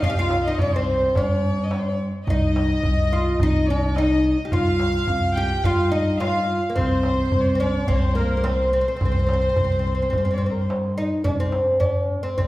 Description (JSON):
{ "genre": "Arabic maqam ensemble", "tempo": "107 BPM", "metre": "4/4", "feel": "straight", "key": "C maqam bayati", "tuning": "A4 = 439 Hz", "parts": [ { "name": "oud", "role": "melody", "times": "0.0-12.5 s", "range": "Bb3 to G4", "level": "-23 LUFS", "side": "equal", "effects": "none" }, { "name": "warm studio violin section", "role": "second line", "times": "0.0-10.7 s", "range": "Bb4 to G5", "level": "-30 LUFS", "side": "right 1 dB", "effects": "none" }, { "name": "warm violin", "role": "second line", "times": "0.0-10.7 s", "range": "Bb4 to G5", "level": "-29 LUFS", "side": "left 2 dB", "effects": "none" }, { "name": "upright bass", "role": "bass", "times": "0.0-12.5 s", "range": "C2 to G2", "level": "-24 LUFS", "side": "equal", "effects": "none" }, { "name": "darbuka", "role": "percussion", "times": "0.0-12.5 s", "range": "none", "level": "-25 LUFS", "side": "equal", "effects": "none" } ], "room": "wet recital hall reverb, RT60 1.7 s", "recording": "heard from further back in the room", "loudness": "-19 LUFS", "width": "side -17 dB against mid", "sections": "0.0-11.3 A section; 11.3-12.5 B section", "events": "none", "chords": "none" }